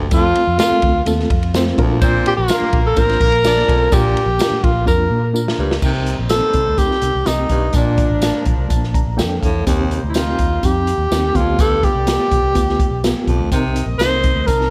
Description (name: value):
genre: uptempo 1960s-style soul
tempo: 125 BPM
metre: 4/4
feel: straight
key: Bb major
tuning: A4 = 440 Hz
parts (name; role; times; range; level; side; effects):
- growling baritone saxophone; riff; 0.0-13.9 s; D2 to C3; -26 LUFS; equal; none
- vintage muted fingered electric bass; bass; 0.0-14.7 s; A1 to Bb2; -23 LUFS; equal; none
- breathy tenor saxophone; melody; 0.1-14.7 s; D4 to C5; -20 LUFS; equal; tape echo
- bright reed electric piano; accompaniment; 0.1-14.7 s; Bb2 to Bb5; -25 LUFS; equal; fast tremolo
- swinging big-band drum kit; drums; 0.1-14.7 s; crash cymbal, hi-hat, kick drum, ride cymbal, snare drum; -22 LUFS; equal; none
- tambourine; percussion; 0.1-14.6 s; none; -33 LUFS; equal; none
- warm horn section; second line; 2.0-14.7 s; F3 to Eb5; -31 LUFS; equal; none
room: moderate club reverb, RT60 0.7 s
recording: none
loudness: -16 LUFS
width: mono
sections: 0.0-5.8 A section; 5.8-14.7 B section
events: drum fill 4.9-5.8; reed electric piano fill 8.7-9.7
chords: 0.1 F; 1.8 Bb; 5.8 Cm7; 7.7 Bbmaj7; 9.7 Eb6; 11.4 G7; 13.5 Cm7